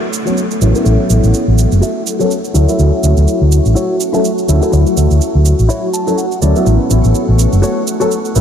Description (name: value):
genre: filtered disco house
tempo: 124 BPM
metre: 4/4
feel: swing 57% on 16ths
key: A major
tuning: A4 = 440 Hz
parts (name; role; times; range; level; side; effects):
- warm concert grand piano; accompaniment; 0.0-8.4 s; F#3 to A4; -16 LUFS; left 1 dB; phaser, low-pass filter
- string machine, full ensemble; sustained chords; 0.0-8.4 s; F#4 to C#6; -20 LUFS; right 1 dB; ensemble chorus, low-pass filter
- direct-recorded clean electric guitar; riff; 0.0-8.4 s; E4 to A5; -23 LUFS; left 1 dB; vintage 12-bit sampler grit, low-pass filter
- shaker; drums; 0.1-8.4 s; none; -25 LUFS; right 7 dB; none
- hollow-body short-scale fingered electric bass; bass; 0.6-8.4 s; F#1 to D2; -10 LUFS; equal; tube saturation, low-pass filter
room: moderate huge ambient reverb, RT60 8.8 s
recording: dreamy mix soaked in reverb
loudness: -10 LUFS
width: side -8 dB against mid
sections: 0.0-8.4 A section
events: clean electric guitar fill 5.7-6.7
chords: 0.0 A6; 2.5 Dmaj9; 6.7 A6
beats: 0.37 | 0.86 1.34 1.82 2.31 | 2.79 3.27 3.76 4.24 | 4.73 5.21 5.69 6.18 | 6.66 7.15 7.63 8.11